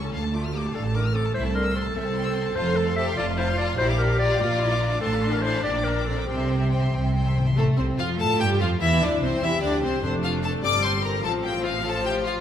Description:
quick classical-period movement for symphony orchestra; 98 BPM (dotted quarters); 6/8; straight; F major; A4 = 441 Hz
rich chamber violin section; melody; 0.0-12.3 s; A3 to D6; -29 LUFS; left 5 dB
mellow clarinet; second line; 0.0-6.9 s; F4 to E5; -27 LUFS; left 1 dB
rich chamber violin section; second line; 0.0-12.4 s; A3 to F6; -32 LUFS; left 3 dB
rich chamber viola section; accompaniment; 0.0-12.4 s; F3 to A4; -30 LUFS; equal
rich chamber cello section; bass; 0.0-12.4 s; C2 to A3; -29 LUFS; right 2 dB
rich chamber double bass section; bass; 0.0-12.4 s; F1 to A2; -28 LUFS; right 2 dB
timpani; percussion; 2.6-3.1, 6.3-7.5, 10.0-10.6 s; F2 to C3; -28 LUFS; left 1 dB
mellow French horn section; sustained chords; 8.2-12.4 s; E4 to C5; -30 LUFS; left 5 dB
wet concert hall reverb, RT60 2.1 s; -21 LUFS; side -9 dB against mid
0.0-7.6 A section; 7.6-12.4 B section
timpani fill 6.3-7.6
0.1 Dm; 1.3 Am/C; 2.6 F; 3.8 Bb; 5.0 F/A; 5.6 Gm/Bb; 6.3 C; 7.6 F/A; 8.8 C; 10.0 F; 11.2 F/A

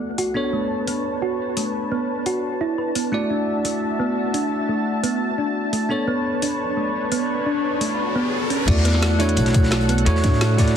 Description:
liquid drum and bass; 173 BPM; 4/4; straight; A4 = 438 Hz
bell-like tine electric piano; accompaniment; 0.0-10.8 s; A3 to D5; -25 LUFS; right 1 dB; low-pass filter, ping-pong delay
lush unison pad; sustained chords; 0.0-10.8 s; D4 to A5; -26 LUFS; left 1 dB; chorus, sidechain pumping
thumb-piano-like synth pluck; arpeggios; 0.2-10.7 s; A3 to B4; -25 LUFS; right 1 dB; chorus, digital delay
drum and bass drum kit; drums; 0.2-10.7 s; crash cymbal, hi-hat, snare drum; -26 LUFS; left 2 dB
riser; sound effects; 6.4-8.7 s; -31 LUFS; left 1 dB
upright bass; bass; 8.7-10.8 s; B1 to A2; -19 LUFS; left 1 dB
crunchy breakbeat drum kit; drums; 8.7-10.8 s; hi-hat, snare drum; -32 LUFS; left 1 dB; high-pass filter on hats, high-pass filter on snare, high-pass filter on room
electronic kick drum; drums; 8.7-10.7 s; -19 LUFS; left 1 dB
light reverb; dense, heavily limited modern master; -19 LUFS; side -8 dB against mid
0.0-8.7 A section; 8.7-10.8 B section
filter sweep on tine electric piano 0.0-8.7; filter sweep on analog synth pad 0.0-8.7; filter sweep on synth arpeggio sound 0.0-8.7; riser 6.4-8.7; drop 8.7-10.8
0.4 Bm9; 3.1 E9sus4; 5.9 Bm9; 8.7 E9sus4

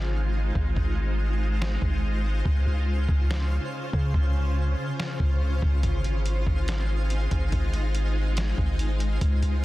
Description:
hip hop, atmospheric cloud-rap; 142 BPM; 4/4; half-time; Ab major; A4 = 440 Hz
granular cloud pad; sustained chords; 0.0-9.6 s; Db3 to C5; -32 LUFS; equal; built-in reverb
long sustained 808-style bass; bass; 0.0-9.6 s; Ab1 to Db3; -25 LUFS; equal
impact; sound effects; 0.0-0.8 s; barely audible
twinkling granular texture; texture; 0.0-9.6 s; C4 to F5; -42 LUFS; equal; built-in reverb
trip hop sampler-style drum kit; drums; 0.6-9.5 s; hi-hat, kick drum, snare drum; -27 LUFS; equal
digital ambience; dense, heavily limited modern master; -23 LUFS; side -17 dB against mid
0.0-9.6 A section
break 0.0-5.8; impact 0.0-0.8
0.0 Ab6; 2.5 Dbmaj7; 5.8 Ab6

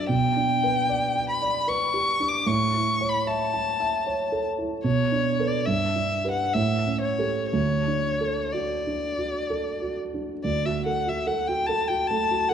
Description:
classical, romantic duo for violin and grand piano; 58-78 BPM; 3/4; rubato; D major; A4 = 441 Hz
rich violin; melody; 0.0-12.5 s; C#5 to D6; -25 LUFS; left 3 dB
warm grand piano; accompaniment; 0.0-12.5 s; D2 to A5; -26 LUFS; right 3 dB
moderate concert hall reverb, RT60 2.2 s; dark, warm production; -23 LUFS; side -8 dB against mid
0.0-10.4 A section; 10.4-12.5 A section
0.1 G/B; 2.5 A; 4.8 Bm7; 5.7 Em7/G; 6.5 A7; 7.5 D

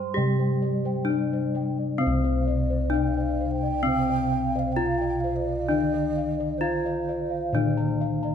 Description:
gamelan; 65 BPM; 4/4; straight; C slendro; A4 = 438 Hz
gamelan-type bronze metallophone; melody; 0.0-8.3 s; C4 to C5; -27 LUFS; left 4 dB
gamelan-type bronze metallophone; accompaniment; 0.0-8.3 s; C3 to G3; -31 LUFS; right 4 dB
gamelan-type bronze metallophone; arpeggios; 0.0-8.3 s; C5 to C6; -35 LUFS; right 2 dB
gamelan-type bossed gongs; bass; 0.0-8.3 s; C2 to G4; -28 LUFS; left 1 dB
gamelan-type bossed gongs; arpeggios; 0.2-8.3 s; C5 to Bb5-25c; -37 LUFS; left 9 dB
breathy mellow low xiao; second line; 2.4-8.3 s; C5 to G5; -32 LUFS; right 5 dB
moderate recital hall reverb, RT60 1.5 s; -23 LUFS; side -8 dB against mid
0.0-8.3 A section

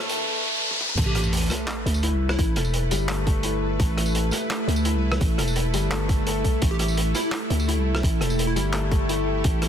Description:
half-time drum and bass; 170 BPM; 4/4; half-time; A minor; A4 = 440 Hz
bowed-like drone; sustained chords; 0.0-9.7 s; A3 to B4; -30 LUFS; right 3 dB; built-in reverb, vintage 12-bit sampler grit, sidechain pumping
felt-muted upright piano; arpeggios; 0.0-9.7 s; G3 to A4; -30 LUFS; left 6 dB; digital delay
growling 808-style bass; bass; 0.0-9.7 s; E1 to D2; -24 LUFS; equal; tube saturation
riser and sub drop; sound effects; 0.0-2.4 s; -27 LUFS; equal
crunchy breakbeat drum kit; drums; 0.1-9.7 s; crash cymbal, handclaps, hi-hat, rim click, tambourine, toms; -29 LUFS; right 1 dB
electronic kick drum; drums; 1.0-9.5 s; -23 LUFS; equal; high-pass filter on kick
plucky unison lead; melody; 1.1-2.7, 6.7-8.6 s; E4 to G4; -34 LUFS; equal; phaser, cassette tape, digital delay
light reverb, small room ambience; dense, heavily limited modern master, high-pass filter; -21 LUFS; side -9 dB against mid
1.0-9.7 A section
riser 0.0-1.0; drum fill 0.7; drop 1.0-9.7; impact 1.0-2.4
0.0 Asus2

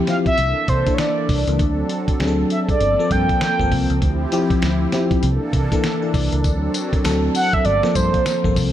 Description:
R&B, new jack swing; 99 BPM; 4/4; swing 61% on 16ths; D minor; A4 = 441 Hz
FM electric piano; accompaniment; 0.0-8.7 s; E3 to D5; -22 LUFS; left 4 dB; chorus
brassy analog pad; sustained chords; 0.0-8.7 s; E3 to A4; -24 LUFS; right 2 dB; chorus
mellow horn-like synth lead; melody; 0.1-8.6 s; C5 to G5; -21 LUFS; right 2 dB; chorus, ping-pong delay
dusty soul sampler-style drum kit; drums; 0.1-8.7 s; hi-hat, kick drum, snare drum, tambourine; -22 LUFS; equal
vintage muted fingered electric bass; bass; 0.4-8.7 s; G1 to C3; -22 LUFS; equal
light reverb; -16 LUFS; side -11 dB against mid
0.0-8.7 A section
0.4 C13; 1.6 D7; 2.8 Gm11; 4.0 Dm11; 5.2 C13; 6.4 D7; 7.7 Gm11

